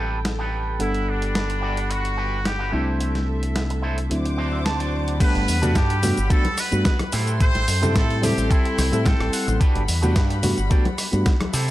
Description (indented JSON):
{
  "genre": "nu-disco, nu disco",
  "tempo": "109 BPM",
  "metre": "4/4",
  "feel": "straight",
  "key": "G major",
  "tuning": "A4 = 440 Hz",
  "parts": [
    { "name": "mellow reed electric piano", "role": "accompaniment", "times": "0.0-11.3 s", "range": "F#3 to F#5", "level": "-26 LUFS", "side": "equal", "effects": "sidechain pumping" },
    { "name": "dark studio string section", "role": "sustained chords", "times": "0.0-11.7 s", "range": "G3 to D6", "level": "-33 LUFS", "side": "left 1 dB", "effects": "sidechain pumping" },
    { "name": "electric guitar with an envelope filter", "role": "riff", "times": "0.0-11.7 s", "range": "D4 to A5", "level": "-31 LUFS", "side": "right 2 dB", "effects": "wide subtle chorus" },
    { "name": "fingered electric bass with an envelope filter", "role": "bass", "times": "0.0-11.7 s", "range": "G1 to C3", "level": "-24 LUFS", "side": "equal", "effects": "none" },
    { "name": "dusty soul sampler-style drum kit", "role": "drums", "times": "0.2-11.7 s", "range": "cabasa, crash cymbal, hi-hat, rim click, snare drum", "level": "-27 LUFS", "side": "equal", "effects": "none" },
    { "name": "muted trumpet section", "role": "melody", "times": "0.8-9.5 s", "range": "D4 to C5", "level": "-28 LUFS", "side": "equal", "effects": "tape echo" },
    { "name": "electronic kick drum", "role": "drums", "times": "5.2-11.4 s", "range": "none", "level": "-19 LUFS", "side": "equal", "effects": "none" },
    { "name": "congas", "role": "percussion", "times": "5.6-11.5 s", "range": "none", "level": "-29 LUFS", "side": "left 2 dB", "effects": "none" }
  ],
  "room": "digital ambience",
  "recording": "none",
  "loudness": "-19 LUFS",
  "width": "side -15 dB against mid",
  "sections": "0.0-5.2 A section; 5.2-11.7 B section",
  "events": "filter sweep on string section 0.0-5.2; clean electric guitar fill 4.1-5.2, 8.5-9.6; drop 5.2-11.7",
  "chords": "0.0 Am7; 0.8 Gmaj7; 2.7 C6; 4.1 D7; 5.2 Gmaj7; 7.1 Am7; 9.6 Gmaj7"
}